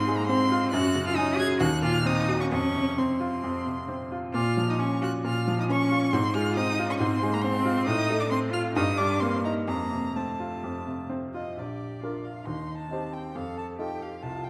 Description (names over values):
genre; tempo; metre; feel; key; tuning
quick classical-period movement for piano trio; 135 BPM; 4/4; rubato; unclear; A4 = 442 Hz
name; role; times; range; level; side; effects
rich violin; melody; 0.0-14.5 s; D5 to Ab6; -34 LUFS; equal; none
clear cello; second line; 0.0-14.5 s; A3 to A4; -33 LUFS; equal; none
clear baby grand piano; accompaniment; 0.0-14.5 s; Bb1 to C5; -30 LUFS; equal; none
room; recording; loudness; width
wet recital hall reverb, RT60 1.5 s; none; -27 LUFS; mono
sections
0.0-11.6 A section; 11.6-14.5 B section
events
none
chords
0.0 Fm/Ab; 0.7 Gb5; 1.6 Cm7b5/Eb; 2.5 F5; 4.3 Bbm; 6.1 Fm/Ab; 7.9 F/A; 8.8 Eb/G; 9.7 F; 11.6 Bb; 12.5 Cm/Eb; 13.3 F7